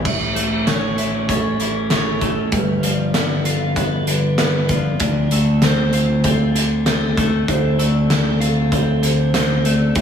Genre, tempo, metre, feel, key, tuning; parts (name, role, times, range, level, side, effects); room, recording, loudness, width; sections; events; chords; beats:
post-rock; 97 BPM; 4/4; straight; D dorian; A4 = 439 Hz
twelve-string electric guitar; arpeggios; 0.0-10.0 s; G2 to F4; -21 LUFS; left 2 dB; slapback echo
vibraphone with medium hard mallets; arpeggios; 0.0-10.0 s; A4 to E5; -26 LUFS; right 2 dB; slapback echo
growling fingered electric bass; bass; 0.1-10.0 s; G1 to D2; -21 LUFS; equal; overdrive
oversized low-tuned drum kit; drums; 0.1-10.0 s; crash cymbal, hi-hat, kick drum, snare drum; -20 LUFS; right 1 dB
moderate lush hall reverb, RT60 1.8 s, small room reverb; big arena sound; -15 LUFS; side -8 dB against mid
0.1-10.0 A section
0.1 A; 2.5 G7; 5.0 Dm7
| 0.05 0.67 1.29 1.91 | 2.53 3.15 3.77 4.39 | 5.01 5.63 6.25 6.87 | 7.49 8.11 8.72 9.34 | 9.96